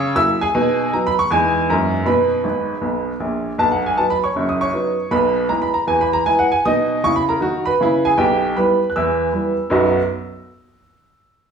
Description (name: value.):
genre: jazz, stride piano.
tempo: 157 BPM.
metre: 4/4.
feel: swing 63% on 8ths.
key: B major.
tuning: A4 = 439 Hz.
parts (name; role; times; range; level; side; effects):
clear upright piano; solo; 0.0-10.0 s; F#1 to F#6; -16 LUFS; right 1 dB; none.
room: wet large studio reverb, RT60 0.9 s.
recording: band playing live in one room, studio reverb.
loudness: -15 LUFS.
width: side -6 dB against mid.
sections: 0.0-3.6 A section; 3.6-9.7 B section; 9.7-11.2 C section.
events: upright piano fill 2.4-3.6.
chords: 0.0 F#7/C#; 0.5 B; 1.3 Emaj7; 1.7 F#13; 2.1 B; 5.1 E/B; 6.6 B; 8.2 Em/B; 9.7 B.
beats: 0.15 | 0.54 0.92 1.30 1.68 | 2.06 2.44 2.82 3.21 | 3.59 3.97 4.35 4.73 | 5.11 5.50 5.88 6.26 | 6.64 7.02 7.41 7.79 | 8.17 8.55 8.93 9.32 | 9.70.